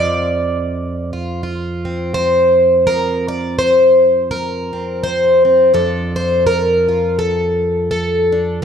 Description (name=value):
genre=folk, solo fingerstyle acoustic guitar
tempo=83 BPM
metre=4/4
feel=swing 57% on 8ths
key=unclear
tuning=A4 = 439 Hz
part: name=picked plugged-in twelve-string acoustic guitar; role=solo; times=0.0-8.6 s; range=F2 to D5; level=-13 LUFS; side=equal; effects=slapback echo
room=moderate recital hall reverb, RT60 1.4 s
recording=dark, warm production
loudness=-13 LUFS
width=side -7 dB against mid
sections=0.0-8.6 A section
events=none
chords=0.0 F5; 5.7 Dm/F